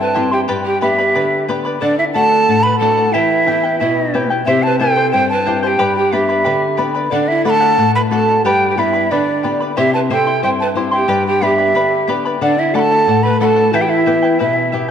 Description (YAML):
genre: andean folk, Andean ensemble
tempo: 91 BPM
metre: 2/4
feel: straight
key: unclear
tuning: A4 = 439 Hz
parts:
  - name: breathy large quena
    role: melody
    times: 0.0-14.9 s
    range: D5 to B5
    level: -16 LUFS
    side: right 1 dB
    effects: none
  - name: breathy large pan pipes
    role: second line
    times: 0.0-14.9 s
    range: D4 to C5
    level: -18 LUFS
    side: right 3 dB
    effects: none
  - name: charango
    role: accompaniment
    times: 0.0-14.9 s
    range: E4 to C6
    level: -20 LUFS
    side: left 2 dB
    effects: none
  - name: flamenco guitar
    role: accompaniment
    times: 0.0-14.9 s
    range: G2 to G4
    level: -20 LUFS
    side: left 6 dB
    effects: none
room: wet scoring stage reverb, RT60 1.9 s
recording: dark, warm production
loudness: -12 LUFS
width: side -8 dB against mid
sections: 0.0-4.5 A section; 4.5-14.9 A section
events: none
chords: 0.5 G; 1.8 D; 3.1 Em; 4.5 C; 5.8 G; 7.1 D; 8.4 G; 9.8 C; 11.1 G; 12.4 D; 13.7 Em